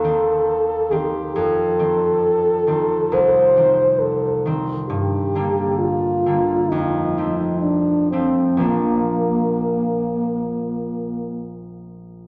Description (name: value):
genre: classical, romantic duo for French horn and harp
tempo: 60-69 BPM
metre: 4/4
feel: rubato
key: Bb major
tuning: A4 = 442 Hz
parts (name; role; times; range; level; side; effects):
- mellow French horn; melody; 0.0-11.6 s; Bb3 to C5; -21 LUFS; equal; none
- concert harp; accompaniment; 0.0-12.3 s; Bb1 to D4; -26 LUFS; equal; none
room: wet recital hall reverb, RT60 1.7 s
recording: none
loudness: -19 LUFS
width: mono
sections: 0.0-12.3 A section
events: none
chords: 0.0 Cm/Eb; 1.4 F7; 4.9 Gm; 6.7 F7; 8.6 Bb